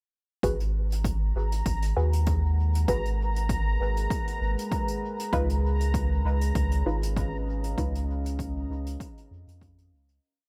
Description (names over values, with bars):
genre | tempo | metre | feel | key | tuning
ambient dub | 98 BPM | 4/4 | swing 54% on 16ths | G# dorian | A4 = 440 Hz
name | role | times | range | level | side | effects
deep dark ambient pad | sustained chords | 2.2-10.2 s | G#3 to F#5 | -40 LUFS | equal | chorus, built-in reverb
filtered dub chord stab | stabs | 0.4-7.9 s | D#4 to B4 | -36 LUFS | equal | subtle chorus, cassette tape, dub echo
soft dub sub bass | bass | 0.4-10.2 s | G#1 to E#2 | -28 LUFS | equal | none
electronic kick drum | drums | 0.4-9.7 s | none | -34 LUFS | equal | overdrive
hi-hat | drums | 0.4-10.2 s | none | -46 LUFS | equal | none
bubbling stepped-filter texture | texture | 1.0-10.2 s | A#5 | -40 LUFS | equal | chorus, built-in reverb
room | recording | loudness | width
digital ambience | none | -27 LUFS | mono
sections
0.4-10.2 groove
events
fade-in on ambient pad 0.4-10.2; fade-out 7.0-10.2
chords
0.4 G#m7; 5.3 C#9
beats
| 0.43 1.05 1.66 2.27 | 2.88 3.50 4.11 4.72 | 5.33 5.94 6.56 7.17 | 7.78 8.39 9.01 9.62